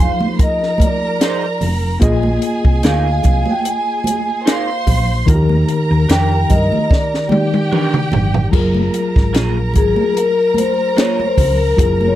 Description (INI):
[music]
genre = lush 1970s-style soul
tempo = 74 BPM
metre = 4/4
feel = swing 54% on 16ths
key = unclear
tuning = A4 = 440 Hz
[part]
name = vibraphone with medium mallets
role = melody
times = 0.0-12.2 s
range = Ab4 to Ab5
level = -18 LUFS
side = left 2 dB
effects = none
[part]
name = rich studio violin section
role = second line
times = 0.0-12.2 s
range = G4 to C6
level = -24 LUFS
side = right 2 dB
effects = none
[part]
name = tine electric piano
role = accompaniment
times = 0.0-12.2 s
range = Eb3 to Eb5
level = -20 LUFS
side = left 2 dB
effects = medium stereo tremolo
[part]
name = hollow-body short-scale fingered electric bass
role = bass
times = 0.0-12.1 s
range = F1 to G2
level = -17 LUFS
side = equal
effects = none
[part]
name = congas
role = percussion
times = 0.2-12.2 s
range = none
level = -24 LUFS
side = right 4 dB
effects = none
[part]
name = compact cocktail drum kit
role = drums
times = 0.4-12.0 s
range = crash cymbal, hi-hat, kick drum, snare drum, toms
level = -15 LUFS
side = equal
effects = none
[part]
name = electric guitar through a small old amp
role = riff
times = 1.2-11.2 s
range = Bb3 to C5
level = -22 LUFS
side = right 5 dB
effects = analog chorus
[sound]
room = little or no reverb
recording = dry, close 1970s-style studio recording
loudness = -13 LUFS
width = side -13 dB against mid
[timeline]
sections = 0.0-8.5 A section; 8.5-12.2 B section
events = drum fill 6.9-8.5; vibraphone solo 8.5-12.2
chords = 0.0 Fm7; 2.0 Bb7sus4; 5.3 Ebmaj7; 8.5 Gbmaj9